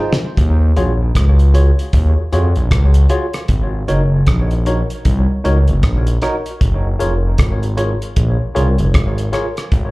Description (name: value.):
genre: lovers rock reggae.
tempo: 77 BPM.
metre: 4/4.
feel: swing 60% on 16ths.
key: unclear.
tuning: A4 = 440 Hz.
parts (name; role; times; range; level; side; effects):
tine electric piano; accompaniment; 0.0-9.5 s; Eb4 to Db5; -22 LUFS; equal; medium stereo tremolo, tape echo, slapback echo.
cloth-damped thuddy drum kit; drums; 0.1-9.9 s; hi-hat, kick drum, rim click, snare drum; -17 LUFS; equal; none.
smooth gliding synth bass; bass; 0.4-9.9 s; F1 to F2; -13 LUFS; equal; none.
room: studio reverb.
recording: live gig heard through the venue's PA, club reverb.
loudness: -13 LUFS.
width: side -22 dB against mid.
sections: 0.0-9.9 A section.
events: drum fill 0.0-0.4.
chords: 0.4 Ebm11; 3.5 Ab7sus4 (rootless); 6.6 Gbmaj7 (rootless).